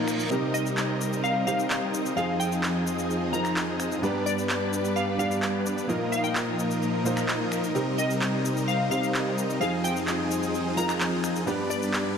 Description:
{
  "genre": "EDM, festival progressive house",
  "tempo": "129 BPM",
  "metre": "4/4",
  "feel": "straight",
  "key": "C minor",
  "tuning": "A4 = 441 Hz",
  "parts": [
    { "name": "clear concert grand piano", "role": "accompaniment", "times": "0.0-12.2 s", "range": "G2 to D5", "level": "-31 LUFS", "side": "right 2 dB", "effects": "ping-pong delay" },
    { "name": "dark chamber string section", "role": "sustained chords", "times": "0.0-12.2 s", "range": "F2 to B4", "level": "-31 LUFS", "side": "left 1 dB", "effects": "vintage 12-bit sampler grit" },
    { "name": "big supersaw lead", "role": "riff", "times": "0.0-12.2 s", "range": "F3 to Eb5", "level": "-29 LUFS", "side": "equal", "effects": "low-pass filter, ping-pong delay" },
    { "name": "electronic finger snaps, shaker and handclaps", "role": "drums", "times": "0.1-12.0 s", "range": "none", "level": "-32 LUFS", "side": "equal", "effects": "overdrive" },
    { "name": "glassy wavetable pluck", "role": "melody", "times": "0.5-12.1 s", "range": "D5 to Bb5", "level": "-32 LUFS", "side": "left 2 dB", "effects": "chorus, ping-pong delay" }
  ],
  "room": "light reverb, digital ambience",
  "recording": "none",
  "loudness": "-24 LUFS",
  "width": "side -7 dB against mid",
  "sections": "0.0-12.2 A section",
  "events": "none",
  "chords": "0.3 Cm7; 2.2 Fm7; 4.0 G; 5.9 Bbsus4; 7.8 Cm7; 9.6 Fm7; 11.5 G",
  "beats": "| 0.31 0.77 1.24 1.70 | 2.17 2.63 3.10 3.56 | 4.03 4.49 4.96 5.42 | 5.89 6.35 6.82 7.29 | 7.75 8.21 8.68 9.14 | 9.61 10.07 10.54 11.01 | 11.47 11.94"
}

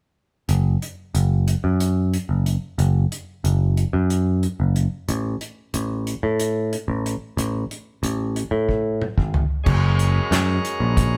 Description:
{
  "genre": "progressive instrumental, band music in an uneven meter",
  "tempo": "183 BPM (eighths)",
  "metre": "7/8",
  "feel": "straight",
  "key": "unclear",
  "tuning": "A4 = 440 Hz",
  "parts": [
    { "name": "picked electric bass", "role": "bass", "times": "0.5-11.2 s", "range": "F#1 to A2", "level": "-22 LUFS", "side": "equal", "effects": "none" },
    { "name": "unplugged drum kit", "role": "drums", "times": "0.5-11.1 s", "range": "crash cymbal, hi-hat, kick drum, snare drum, toms", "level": "-28 LUFS", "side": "equal", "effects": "none" },
    { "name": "bright tonewheel organ", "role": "accompaniment", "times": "9.6-11.2 s", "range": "G#3 to A#4", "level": "-28 LUFS", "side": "equal", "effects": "overdrive, stopped rotary speaker" }
  ],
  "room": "moderate stone room reverb, RT60 1.0 s",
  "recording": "band playing live in one room",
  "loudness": "-22 LUFS",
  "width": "mono",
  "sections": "0.5-9.7 A section; 9.7-11.2 B section",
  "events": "drum fill 8.7-9.7",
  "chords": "0.5 N.C.; 9.7 F#",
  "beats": "| 0.49 0.82 1.15 1.48 1.80 2.13 2.46 | 2.79 3.12 3.44 3.77 4.10 4.43 4.75 | 5.08 5.41 5.74 6.07 6.39 6.72 7.05 | 7.38 7.70 8.03 8.36 8.68 9.01 9.34 | 9.66 9.99 10.32 10.64 10.97"
}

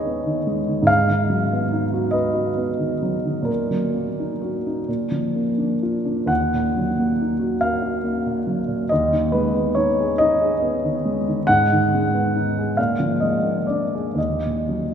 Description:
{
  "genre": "classical, romantic nocturne for solo piano",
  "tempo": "40-48 BPM (dotted quarters)",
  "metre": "6/8",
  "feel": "rubato",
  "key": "Eb minor",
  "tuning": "A4 = 440 Hz",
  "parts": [
    { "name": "warm grand piano", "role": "solo", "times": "0.0-14.9 s", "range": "Eb2 to Gb5", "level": "-19 LUFS", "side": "equal", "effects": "none" }
  ],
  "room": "wet cathedral reverb, RT60 4.9 s",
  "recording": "recorded in a church or concert hall",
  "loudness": "-19 LUFS",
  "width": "side -8 dB against mid",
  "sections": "0.0-14.9 A section",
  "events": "none",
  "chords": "0.0 Abm/Eb; 0.9 Abm7; 3.5 Ebm/Bb; 4.9 Bb; 6.3 Ebm; 8.9 Abm/Eb; 11.5 Abm; 12.8 Bb7; 14.2 Ebm",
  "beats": "| 0.88 2.13 | 3.48 4.88 | 6.29 7.62 | 8.90 10.18 | 11.47 12.78 | 14.17"
}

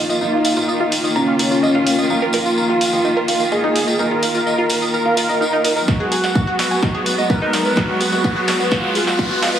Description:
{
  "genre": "melodic techno",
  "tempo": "127 BPM",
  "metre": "4/4",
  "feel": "straight",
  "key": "Eb minor",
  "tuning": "A4 = 440 Hz",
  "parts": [
    { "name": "soft supersaw", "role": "melody", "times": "0.0-9.6 s", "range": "Db4 to Bb4", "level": "-20 LUFS", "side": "equal", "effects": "cassette tape, sidechain pumping, low-pass filter, digital delay" },
    { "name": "clear studio string section", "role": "sustained chords", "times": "0.0-9.6 s", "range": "Eb3 to F4", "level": "-21 LUFS", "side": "right 1 dB", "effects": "vintage 12-bit sampler grit, sidechain pumping" },
    { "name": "analog pluck", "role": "arpeggios", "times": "0.0-9.6 s", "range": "Eb4 to Eb6", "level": "-22 LUFS", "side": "right 1 dB", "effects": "chorus, phaser, sidechain pumping, digital delay" },
    { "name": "tight sequencer bass", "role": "bass", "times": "0.0-9.6 s", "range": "Eb1 to Ab1", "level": "-43 LUFS", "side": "equal", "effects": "none" },
    { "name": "tambourine", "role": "percussion", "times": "0.1-9.6 s", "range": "none", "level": "-26 LUFS", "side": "left 3 dB", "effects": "none" },
    { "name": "punchy analog drum machine", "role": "drums", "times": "0.4-9.5 s", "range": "hi-hat, snare drum, toms", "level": "-24 LUFS", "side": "right 2 dB", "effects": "high-pass filter on hats, high-pass filter on toms, high-pass filter on snare" },
    { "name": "electronic kick drum", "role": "drums", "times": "5.9-9.3 s", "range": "none", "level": "-18 LUFS", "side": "equal", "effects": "none" },
    { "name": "riser", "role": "sound effects", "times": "7.0-9.6 s", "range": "none", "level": "-26 LUFS", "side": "equal", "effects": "none" }
  ],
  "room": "wet lush hall reverb, RT60 1.7 s, digital ambience",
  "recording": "heavily compressed radio sound, multiband compression, high-pass filter, small room ambience",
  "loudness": "-15 LUFS",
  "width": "side -9 dB against mid",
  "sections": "0.0-9.6 A section",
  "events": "build-up 0.0-9.6; filter sweep on supersaw synth 0.0-9.6; drum fill 5.9-9.6; riser 7.0-9.6",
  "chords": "0.0 Ebsus2; 5.9 Abm7",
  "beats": "| 0.21 0.69 1.16 1.63 | 2.10 2.57 3.05 3.52 | 3.99 4.46 4.94 5.41 | 5.88 6.35 6.83 7.30 | 7.77 8.24 8.72 9.19"
}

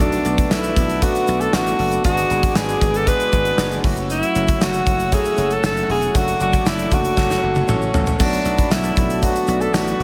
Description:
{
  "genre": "1980s-style pop",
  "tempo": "117 BPM",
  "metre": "4/4",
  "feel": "straight",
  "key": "unclear",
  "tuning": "A4 = 441 Hz",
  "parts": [
    { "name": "clear alto saxophone", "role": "melody", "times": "0.0-10.0 s", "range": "D4 to B4", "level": "-23 LUFS", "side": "equal", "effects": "none" },
    { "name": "crunchy overdriven guitar", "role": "accompaniment", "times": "0.0-8.7 s", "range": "B2 to G#4", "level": "-37 LUFS", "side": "equal", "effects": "none" },
    { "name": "tine electric piano", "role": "accompaniment", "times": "0.0-10.0 s", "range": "F#3 to B4", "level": "-26 LUFS", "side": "equal", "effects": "none" },
    { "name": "warm analog pad", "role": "sustained chords", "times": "0.0-10.0 s", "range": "F#4 to E6", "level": "-32 LUFS", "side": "equal", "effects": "chorus" },
    { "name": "dry thumbed slap bass", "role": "bass", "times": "0.0-10.0 s", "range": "E1 to B1", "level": "-27 LUFS", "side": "equal", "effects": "none" },
    { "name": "gated 80s drum kit", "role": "drums", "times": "0.0-10.0 s", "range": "crash cymbal, hi-hat, kick drum, snare drum, tambourine, toms", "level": "-23 LUFS", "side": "equal", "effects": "gated reverb" },
    { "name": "tube shaker", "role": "percussion", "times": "0.0-10.0 s", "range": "none", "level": "-40 LUFS", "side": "equal", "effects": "none" }
  ],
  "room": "light reverb, studio reverb",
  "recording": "none",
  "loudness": "-18 LUFS",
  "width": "mono",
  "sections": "0.0-8.2 A section; 8.2-10.0 A section",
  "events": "drum fill 7.2-8.2",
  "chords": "0.0 Bm7; 2.0 G#m7b5; 3.8 F#m7; 6.1 D/F#; 7.2 F#m; 8.2 Bm7",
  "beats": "0.51 1.02 1.53 | 2.05 2.56 3.07 3.58 | 4.10 4.61 5.12 5.64 | 6.15 6.66 7.17 7.69 | 8.20 8.71 9.23 9.74"
}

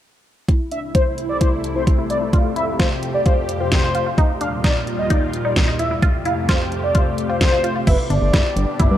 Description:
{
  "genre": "synth-pop",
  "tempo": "130 BPM",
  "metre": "4/4",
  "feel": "straight",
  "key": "unclear",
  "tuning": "A4 = 441 Hz",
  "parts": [
    { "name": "lush unison pad", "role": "sustained chords", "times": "0.5-9.0 s", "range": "C2 to G4", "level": "-25 LUFS", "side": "equal", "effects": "chorus, phaser, shimmer reverb" },
    { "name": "resonant blip pluck", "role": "arpeggios", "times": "0.5-9.0 s", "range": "D4 to F4", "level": "-26 LUFS", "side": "left 1 dB", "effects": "phaser, low-pass filter, slapback echo, shimmer reverb" },
    { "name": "pop drum kit", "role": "drums", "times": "0.5-8.9 s", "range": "crash cymbal, hi-hat, kick drum, snare drum", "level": "-18 LUFS", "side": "equal", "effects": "overdrive" },
    { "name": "mellow synth brass", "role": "second line", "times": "0.7-7.7 s", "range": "C5 to F5", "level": "-23 LUFS", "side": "left 1 dB", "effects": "chorus, slapback echo, shimmer reverb" },
    { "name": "mellow horn-like synth lead", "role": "melody", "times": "7.9-9.0 s", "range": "B4 to D5", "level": "-23 LUFS", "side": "right 1 dB", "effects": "chorus, slapback echo, shimmer reverb" },
    { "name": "chorused synth bass", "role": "bass", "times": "7.9-9.0 s", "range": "G1 to G2", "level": "-18 LUFS", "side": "equal", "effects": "none" }
  ],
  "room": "moderate plate reverb, RT60 1.9 s, digital ambience",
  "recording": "dark, warm production",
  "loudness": "-16 LUFS",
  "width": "side -12 dB against mid",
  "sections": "0.5-7.9 A section; 7.9-9.0 B section",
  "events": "filter sweep on synth arpeggio sound 0.5-7.9",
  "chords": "0.5 C6; 2.3 Fadd9; 4.2 Ebadd9; 5.8 Fadd9; 7.9 G",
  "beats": "| 0.49 0.95 1.41 1.87 | 2.33 2.79 3.25 3.72 | 4.18 4.64 5.10 5.56 | 6.03 6.49 6.95 7.41 | 7.87 8.33 8.79"
}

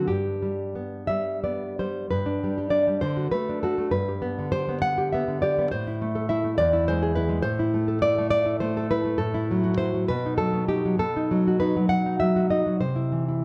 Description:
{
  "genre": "romantic piece for solo classical guitar",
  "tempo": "58-70 BPM (dotted quarters)",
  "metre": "6/8",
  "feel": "rubato",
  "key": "G major",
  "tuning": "A4 = 439 Hz",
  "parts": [
    { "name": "nylon-string guitar", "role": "solo", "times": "0.0-13.4 s", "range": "E2 to F#5", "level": "-25 LUFS", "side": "equal", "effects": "none" }
  ],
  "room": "moderate recital hall reverb, RT60 1.6 s",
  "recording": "lossy compression artefacts",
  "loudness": "-25 LUFS",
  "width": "mono",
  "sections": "0.0-2.1 A section; 2.1-13.4 B section",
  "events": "none",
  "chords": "0.1 G; 3.0 D; 3.9 G; 5.7 Am; 6.5 E; 7.4 Am; 9.2 Am6; 10.1 B; 12.8 C",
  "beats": "| 0.09 1.09 | 2.10 3.02 | 3.92 4.81 | 5.68 6.55 | 7.42 8.30 | 9.18 10.07 | 10.98 11.90 | 12.80"
}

